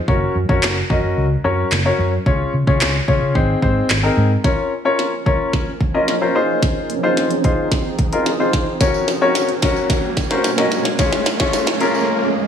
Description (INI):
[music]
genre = dance-pop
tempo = 110 BPM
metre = 4/4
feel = straight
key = Bb minor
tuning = A4 = 438 Hz
[part]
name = warm grand piano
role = accompaniment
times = 0.1-12.2 s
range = C4 to Eb5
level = -18 LUFS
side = left 3 dB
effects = sidechain pumping
[part]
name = vintage muted fingered electric bass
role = bass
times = 0.1-4.3 s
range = Gb1 to Db3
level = -19 LUFS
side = right 1 dB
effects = sidechain pumping
[part]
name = glitchy drum kit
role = drums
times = 0.1-11.9 s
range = handclaps, hi-hat, kick drum, snare drum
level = -20 LUFS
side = equal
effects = none
[part]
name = granular cloud pad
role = sustained chords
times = 5.1-12.5 s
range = F3 to Db5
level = -24 LUFS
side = right 4 dB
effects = built-in reverb, sidechain pumping
[part]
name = riser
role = sound effects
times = 6.8-12.1 s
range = none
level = -27 LUFS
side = right 3 dB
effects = none
[part]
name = tambourine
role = percussion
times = 8.8-12.1 s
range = none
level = -33 LUFS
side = right 12 dB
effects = none
[sound]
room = light reverb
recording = studio ambience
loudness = -15 LUFS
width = side -8 dB against mid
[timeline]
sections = 0.0-4.4 A section; 4.4-12.5 B section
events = build-up 4.4-12.5; drum fill 4.4-12.1; riser 6.8-12.5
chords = 0.1 Gb; 2.3 Db; 3.4 Ab; 4.4 Bbm; 6.4 Fm7; 8.8 Gb; 11.0 Db